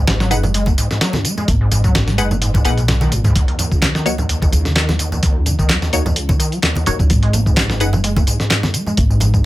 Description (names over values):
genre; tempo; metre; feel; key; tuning
breakbeat, breaks; 128 BPM; 4/4; swing 54% on 16ths; unclear; A4 = 442 Hz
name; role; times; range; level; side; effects
overdriven acid bass; riff; 0.0-9.5 s; Db2 to Bb3; -20 LUFS; equal; lush chorus, dub echo
upright bass; bass; 0.0-9.5 s; Gb1 to Eb2; -18 LUFS; equal; none
dusty soul sampler-style drum kit; drums; 0.1-9.4 s; hi-hat, kick drum, snare drum; -17 LUFS; equal; none
electronic tambourine and handclaps; drums; 0.1-9.4 s; none; -25 LUFS; equal; none
filtered dub chord stab; stabs; 0.3-7.9 s; Bb3 to Gb5; -22 LUFS; left 2 dB; phaser, cassette tape, dub echo
congas; percussion; 0.4-9.3 s; none; -24 LUFS; right 1 dB; none
room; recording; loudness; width
light reverb; none; -14 LUFS; side -17 dB against mid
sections
0.0-9.5 A section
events
none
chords
0.0 Abm7; 3.4 Ebm7; 7.1 Ab7(no3)